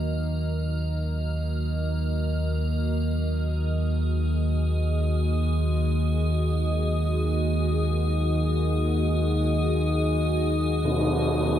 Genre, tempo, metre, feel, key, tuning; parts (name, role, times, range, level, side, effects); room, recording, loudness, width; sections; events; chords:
dark ambient drone; free time; A4 = 440 Hz
deep dark ambient pad; sustained chords; 0.0-11.6 s; Bb3 to Eb5; -31 LUFS; right 2 dB; chorus, built-in reverb
deep rumbling drone; drone; 0.0-11.6 s; Eb2 to Eb3; -24 LUFS; equal; built-in reverb
icy glass pad; texture; 0.0-11.6 s; Ab4 to Bb4; -33 LUFS; left 2 dB; chorus, built-in reverb
tam-tam; percussion; 10.8-11.1 s; -24 LUFS; equal; low-pass filter on cymbals
light reverb; -23 LUFS; side -10 dB against mid
0.0-11.6 A section
0.0 Ebm